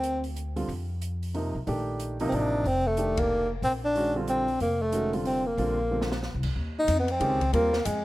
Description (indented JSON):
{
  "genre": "modal jazz",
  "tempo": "184 BPM",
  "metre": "3/4",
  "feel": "swing 62% on 8ths",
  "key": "Bb major",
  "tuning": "A4 = 440 Hz",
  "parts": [
    { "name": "breathy tenor saxophone", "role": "melody", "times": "0.0-0.2, 2.3-8.0 s", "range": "Ab3 to Eb4", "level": "-26 LUFS", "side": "equal", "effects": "none" },
    { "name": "upright bass", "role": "bass", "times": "0.0-8.0 s", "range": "F1 to F2", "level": "-31 LUFS", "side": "equal", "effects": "none" },
    { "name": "open jazz drum kit", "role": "drums", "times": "0.0-7.9 s", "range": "crash cymbal, hi-hat, kick drum, ride cymbal, snare drum", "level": "-37 LUFS", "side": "equal", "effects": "none" },
    { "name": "warm grand piano", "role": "accompaniment", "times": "0.6-7.7 s", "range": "C3 to Bb4", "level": "-31 LUFS", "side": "right 2 dB", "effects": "none" }
  ],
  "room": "light reverb, small room ambience",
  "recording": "rough home demo mix",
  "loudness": "-25 LUFS",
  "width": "side -17 dB against mid",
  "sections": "0.0-6.6 A section; 6.6-8.0 B section",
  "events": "band accent 3.1; drum fill 5.9-6.2",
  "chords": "0.0 Bbmaj9; 6.6 Eb9sus4"
}